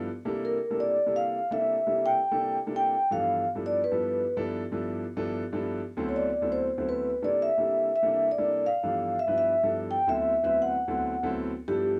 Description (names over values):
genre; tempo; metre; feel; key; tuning
jazz; 168 BPM; 4/4; straight; G mixolydian; A4 = 440 Hz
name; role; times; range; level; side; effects
warm concert grand piano; accompaniment; 0.0-12.0 s; D2 to B4; -34 LUFS; equal; cassette tape
vibraphone with soft mallets; melody; 0.5-12.0 s; G4 to G5; -28 LUFS; equal; none
room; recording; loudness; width
wet studio ambience, RT60 0.5 s; home recording on cassette; -27 LUFS; mono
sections
0.0-11.5 A section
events
none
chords
0.1 C13; 2.9 G13; 5.8 D13; 7.2 C13; 8.6 G13; 10.1 D13